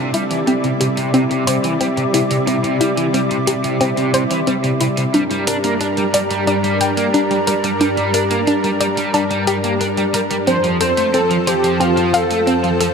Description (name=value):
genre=synthwave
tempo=90 BPM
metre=4/4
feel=straight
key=unclear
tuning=A4 = 441 Hz
part: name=lush unison pad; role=sustained chords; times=0.0-12.9 s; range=F2 to D5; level=-18 LUFS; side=left 1 dB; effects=chorus, shimmer reverb
part: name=crunchy overdriven guitar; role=riff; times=0.0-12.9 s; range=C3 to D4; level=-21 LUFS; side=right 2 dB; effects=analog chorus, low-pass filter, digital delay, shimmer reverb
part: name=analog pluck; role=arpeggios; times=0.1-12.9 s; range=C4 to G5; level=-21 LUFS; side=left 2 dB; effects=chorus, vintage 12-bit sampler grit, digital delay, shimmer reverb
part: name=electronic hi-hat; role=drums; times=0.1-12.9 s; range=none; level=-24 LUFS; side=right 1 dB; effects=none
part: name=soft supersaw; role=melody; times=10.5-12.8 s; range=F4 to C5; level=-19 LUFS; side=equal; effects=cassette tape, ping-pong delay, shimmer reverb
room=moderate lush hall reverb, RT60 2.8 s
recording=none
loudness=-14 LUFS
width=side -6 dB against mid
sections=0.0-12.9 A section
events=filter sweep on synth arpeggio sound 0.0-12.9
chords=0.0 Cadd9; 5.1 Gm; 10.5 F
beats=0.47 1.14 1.81 | 2.47 3.14 3.81 4.47 | 5.14 5.81 6.47 7.14 | 7.81 8.47 9.14 9.81 | 10.47 11.14 11.81 12.47